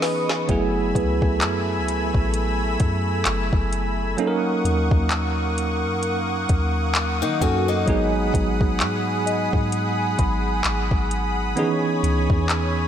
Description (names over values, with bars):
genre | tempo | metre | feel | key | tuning
contemporary R&B | 65 BPM | 4/4 | swing 58% on 16ths | unclear | A4 = 440 Hz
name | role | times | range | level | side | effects
bell-like tine electric piano | accompaniment | 0.0-12.9 s | D#3 to A#4 | -25 LUFS | right 3 dB | fast stereo tremolo
lush unison pad | sustained chords | 0.0-12.9 s | A3 to E6 | -26 LUFS | equal | chorus
smooth R&B drum kit | drums | 0.0-12.7 s | handclaps, hi-hat, kick drum, snare drum | -24 LUFS | left 1 dB | vintage 12-bit sampler grit
celesta | texture | 0.0-12.0 s | B4 to B5 | -32 LUFS | left 5 dB | ping-pong delay
soft 808-style bass | bass | 0.5-12.9 s | F#1 to D#3 | -25 LUFS | left 1 dB | none
picked acoustic archtop guitar | arpeggios | 7.2-8.1 s | A#3 to F#4 | -25 LUFS | left 8 dB | ping-pong delay
room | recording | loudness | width
light reverb | none | -19 LUFS | side -9 dB against mid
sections
0.5-12.9 A section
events
drum fill 0.0-0.5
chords
0.5 F#m11; 4.2 D#m7; 7.9 G#m7; 11.6 C#m9